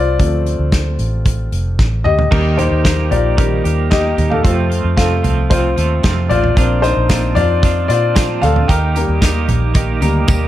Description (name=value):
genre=piano-driven pop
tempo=113 BPM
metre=4/4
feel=straight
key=unclear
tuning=A4 = 440 Hz
part: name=clear baby grand piano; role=accompaniment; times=0.0-10.5 s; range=Eb3 to G5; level=-18 LUFS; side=left 3 dB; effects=none
part: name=vintage muted fingered electric bass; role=bass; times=0.0-10.5 s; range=F1 to Bb2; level=-17 LUFS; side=equal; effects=none
part: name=loose indie drum kit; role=drums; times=0.2-10.4 s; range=crash cymbal, hi-hat, kick drum, snare drum, toms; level=-16 LUFS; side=equal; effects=none
part: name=twelve-string electric guitar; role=riff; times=2.3-10.5 s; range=F2 to G4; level=-21 LUFS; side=right 6 dB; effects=tremolo
part: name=tambourine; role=percussion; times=6.6-10.4 s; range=none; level=-34 LUFS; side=left 6 dB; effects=none
room=moderate large studio reverb, RT60 0.9 s, studio ambience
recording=dark, warm production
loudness=-12 LUFS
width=side -13 dB against mid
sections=0.0-2.3 A section; 2.3-10.5 B section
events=grand piano solo 0.0-2.3, 2.3-10.5; drum fill 1.8-2.3, 10.3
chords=0.0 Dm7; 2.3 Eb; 4.4 F; 6.6 Bbadd9; 8.7 Eb